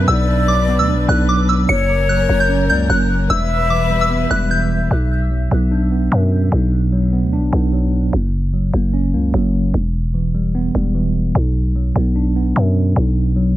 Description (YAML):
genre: hip hop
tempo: 149 BPM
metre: 4/4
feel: half-time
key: B harmonic minor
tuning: A4 = 441 Hz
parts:
  - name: soft synth bell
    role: melody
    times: 0.0-4.7 s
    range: D6 to C#7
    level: -20 LUFS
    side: right 1 dB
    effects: chorus, analog delay
  - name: mellow tine electric piano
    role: accompaniment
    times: 0.0-13.6 s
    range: E2 to D4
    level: -19 LUFS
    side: right 1 dB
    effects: slow stereo tremolo
  - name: warm symphonic string section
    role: sustained chords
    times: 0.0-4.9 s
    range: F#3 to B4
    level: -27 LUFS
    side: left 1 dB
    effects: none
  - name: growling 808-style bass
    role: bass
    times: 0.0-13.6 s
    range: E1 to F#2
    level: -17 LUFS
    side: equal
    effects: none
  - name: breathy mellow silver concert flute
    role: second line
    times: 0.1-4.9 s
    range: C#5 to E5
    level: -23 LUFS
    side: left 7 dB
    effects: analog delay
room: light reverb, small room ambience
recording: echo-heavy mix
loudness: -14 LUFS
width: side -14 dB against mid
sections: 0.0-4.9 A section; 4.9-13.6 B section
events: none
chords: 0.0 Bm; 1.7 F#; 3.3 Em; 4.9 Bm; 8.1 F#; 9.7 Em; 11.4 Bm